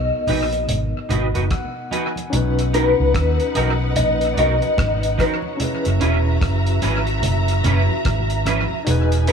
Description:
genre	lovers rock reggae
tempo	73 BPM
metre	4/4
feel	swing 61% on 16ths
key	B major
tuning	A4 = 440 Hz
part	mellow electric guitar	melody	0.0-9.3 s	B4 to D#5	-22 LUFS	left 3 dB	tremolo, tape echo
part	overdriven tine electric piano	accompaniment	0.0-9.3 s	B3 to G#5	-28 LUFS	left 2 dB	medium tremolo
part	vintage muted fingered electric bass	bass	0.0-9.3 s	E1 to D#2	-20 LUFS	equal	none
part	electric guitar through a small old amp	stabs	0.3-9.3 s	C#4 to B4	-26 LUFS	right 4 dB	ensemble chorus
part	cloth-damped thuddy drum kit	drums	0.3-9.3 s	hi-hat, kick drum, rim click	-26 LUFS	equal	tape echo
part	congas	percussion	0.3-9.1 s	none	-29 LUFS	right 4 dB	tape echo
part	dark studio string section	second line	2.3-9.3 s	D#4 to A#5	-26 LUFS	equal	none
room	light reverb, small room ambience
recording	none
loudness	-17 LUFS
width	side -6 dB against mid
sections	0.0-2.3 A section; 2.3-9.3 B section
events	tine electric piano fill 1.1-2.3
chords	0.0 G#m7; 2.3 Bmaj7; 5.6 F#7sus4

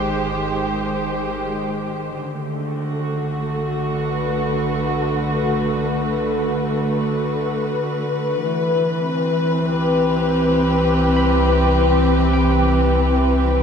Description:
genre	ambient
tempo	free time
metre	none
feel	none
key	C lydian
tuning	A4 = 440 Hz
part	muted chamber string section	sustained chords	0.0-13.6 s	D3 to C5	-18 LUFS	equal	shimmer reverb
part	deep rumbling drone	bass	0.0-13.6 s	Ab1 to C2	-24 LUFS	equal	built-in reverb
part	clean electric guitar	arpeggios	11.2-13.6 s	G5 to B5	-30 LUFS	right 2 dB	none
room	wet huge ambient reverb, RT60 7.6 s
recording	cassette tape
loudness	-17 LUFS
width	side -7 dB against mid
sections	0.0-8.4 A section; 8.4-13.6 B section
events	fade-out on synth drone 0.0-8.4; filter sweep on string section 0.0-8.4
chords	0.0 Abmaj7; 2.2 Bm7; 8.4 Cmaj7

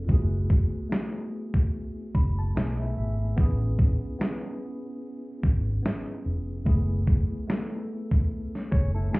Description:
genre	lo-fi hip hop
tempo	73 BPM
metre	4/4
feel	swing 56% on 16ths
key	unclear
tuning	A4 = 439 Hz
part	vibraphone with soft mallets	melody	0.0-2.5 s	F4 to F#4	-45 LUFS	right 1 dB	tape echo, plate reverb
part	mellow tine electric piano	accompaniment	0.0-9.2 s	A3 to B5	-34 LUFS	equal	medium stereo tremolo, cassette tape, plate reverb
part	vintage muted fingered electric bass	bass	0.0-9.1 s	F1 to B1	-26 LUFS	equal	none
part	dusty soul sampler-style drum kit	drums	0.1-9.2 s	kick drum, snare drum	-24 LUFS	equal	vintage 12-bit sampler grit
part	mellow electric guitar	second line	8.7-9.2 s	C#4 to C#5	-36 LUFS	left 1 dB	tape echo, plate reverb
room	light reverb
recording	heard muffled through a wall, club reverb, EQ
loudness	-24 LUFS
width	side -24 dB against mid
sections	0.0-9.2 A section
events	break 0.0-9.2; tine electric piano fill 1.7-3.4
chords	0.1 F#m11; 3.4 Amaj9; 6.7 F#m11

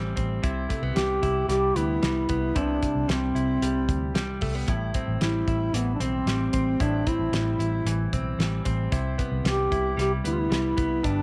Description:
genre	jangly indie pop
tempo	113 BPM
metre	4/4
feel	straight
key	unclear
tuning	A4 = 440 Hz
part	direct-recorded clean electric guitar	arpeggios	0.0-11.2 s	G2 to E4	-33 LUFS	equal	slapback echo
part	vintage muted fingered electric bass	bass	0.0-11.2 s	G1 to D2	-31 LUFS	equal	none
part	cloth-damped thuddy drum kit	drums	0.2-11.2 s	hi-hat, kick drum, snare drum	-31 LUFS	equal	none
part	dark duduk	melody	1.0-11.2 s	B3 to G4	-28 LUFS	equal	slapback echo
room	light reverb, small room ambience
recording	none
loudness	-26 LUFS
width	mono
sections	0.0-11.2 A section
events	none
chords	0.4 Cmaj7; 4.7 Am7; 8.9 Cmaj7

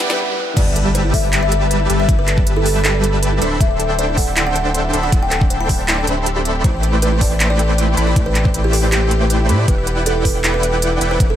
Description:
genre	future bass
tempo	158 BPM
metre	4/4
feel	half-time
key	G major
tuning	A4 = 440 Hz
part	buzzing kalimba	melody	0.0-11.4 s	G4 to B5	-22 LUFS	equal	sidechain pumping, tape echo
part	felt-muted upright piano	accompaniment	0.0-0.6 s	G3 to B4	-29 LUFS	left 2 dB	sidechain pumping, tape echo
part	rich symphonic string section	sustained chords	0.0-11.4 s	D3 to B4	-29 LUFS	equal	sidechain pumping
part	dense compressed supersaw	riff	0.0-11.4 s	G3 to B5	-20 LUFS	equal	vintage 12-bit sampler grit, sidechain pumping
part	saturated sub bass	bass	0.0-11.4 s	D1 to A2	-19 LUFS	equal	sidechain pumping
part	trap drum kit	drums	0.0-11.3 s	crash cymbal, handclaps, hi-hat, snare drum	-21 LUFS	right 1 dB	overdrive, high-pass filter on snare, high-pass filter on hats, high-pass filter on cymbals, high-pass filter on room
part	riser, swell and impact	sound effects	0.0-2.1 s	none	-27 LUFS	right 1 dB	none
part	wide unison pluck	arpeggios	0.6-11.3 s	E4 to G5	-29 LUFS	left 1 dB	sidechain pumping, tape echo
part	electronic kick drum	drums	0.6-11.3 s	none	-16 LUFS	equal	overdrive
room	digital ambience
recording	high-pass filter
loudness	-14 LUFS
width	side -11 dB against mid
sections	0.6-11.4 A section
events	drum fill 0.0; riser 0.0; swell 0.0-0.6; break 0.2-0.6; drop 0.6-11.4; impact 0.6-2.1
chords	0.0 Em7; 0.6 G69; 3.4 D9sus4; 6.6 Am11; 9.7 Em7

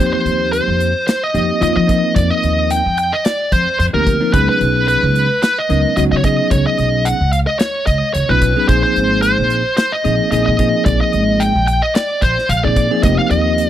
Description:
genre	electric jazz fusion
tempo	110 BPM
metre	4/4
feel	swing 55% on 16ths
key	unclear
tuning	A4 = 440 Hz
part	smooth overdriven lead guitar	melody	0.0-13.7 s	Bb4 to G5	-16 LUFS	equal	none
part	bell-like tine electric piano	accompaniment	0.0-13.7 s	F3 to Bb4	-18 LUFS	equal	fast stereo tremolo
part	upright bass	bass	0.0-13.7 s	F1 to F3	-18 LUFS	equal	none
part	modern studio drum kit	drums	0.3-13.7 s	hi-hat, kick drum, snare drum	-18 LUFS	equal	none
room	small room ambience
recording	dry, close 1970s-style studio recording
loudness	-12 LUFS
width	side -11 dB against mid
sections	0.0-13.7 A section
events	none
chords	0.0 F9sus4; 4.3 Db9sus4; 8.7 Bb9sus4; 13.0 F9sus4

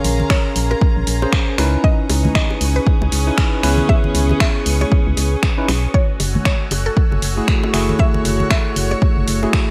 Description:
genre	deep house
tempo	117 BPM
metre	4/4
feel	swing 58% on 16ths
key	unclear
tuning	A4 = 442 Hz
part	mallet-like synth pluck	melody	0.0-9.2 s	A4 to Fb5	-29 LUFS	equal	chorus, digital delay
part	soft string machine	sustained chords	0.0-9.7 s	A3 to Fb6	-33 LUFS	equal	phaser, ensemble chorus, vintage 12-bit sampler grit, sidechain pumping
part	barky tine electric piano	stabs	0.0-9.7 s	A3 to Db5	-25 LUFS	equal	sidechain pumping, digital delay
part	organ-like FM bass	bass	0.0-9.5 s	Gb1 to Db2	-21 LUFS	equal	sidechain pumping
part	punchy analog drum machine	drums	0.0-9.7 s	finger snaps, hi-hat	-25 LUFS	equal	gated reverb
part	rich chamber string section	texture	0.0-9.7 s	Db4 to Bb5	-29 LUFS	equal	sidechain pumping
part	congas and bongos	percussion	0.2-9.5 s	none	-28 LUFS	equal	none
part	electronic kick drum	drums	0.3-9.7 s	none	-18 LUFS	equal	overdrive
room	light reverb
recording	bright 1980s-style digital production, vinyl crackle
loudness	-17 LUFS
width	mono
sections	0.0-9.7 A section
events	none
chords	0.0 Bbm9; 1.6 Dbm9; 5.9 Gbm9

